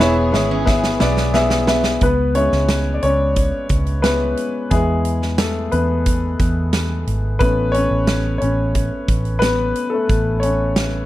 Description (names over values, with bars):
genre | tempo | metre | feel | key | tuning
piano-driven pop | 89 BPM | 4/4 | straight | A major | A4 = 440 Hz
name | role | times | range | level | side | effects
clear grand piano | accompaniment | 0.0-11.1 s | E3 to E5 | -19 LUFS | left 2 dB | none
warm studio string section | sustained chords | 0.0-2.0 s | E3 to G#4 | -31 LUFS | right 2 dB | none
fingerpicked plugged-in steel-string acoustic guitar | riff | 0.0-1.8 s | B3 to E4 | -26 LUFS | right 8 dB | none
vintage muted fingered electric bass | bass | 0.0-11.1 s | E1 to E2 | -20 LUFS | equal | none
huge arena drum kit | drums | 0.0-10.9 s | hi-hat, kick drum, snare drum | -21 LUFS | right 1 dB | none
room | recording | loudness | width
little or no reverb | dry, close 1970s-style studio recording | -15 LUFS | side -15 dB against mid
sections
0.0-2.0 A section; 2.0-11.1 B section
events
drum fill 0.0-2.0; grand piano solo 2.0-11.1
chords
0.0 E; 2.0 C#m7; 4.7 E; 7.4 A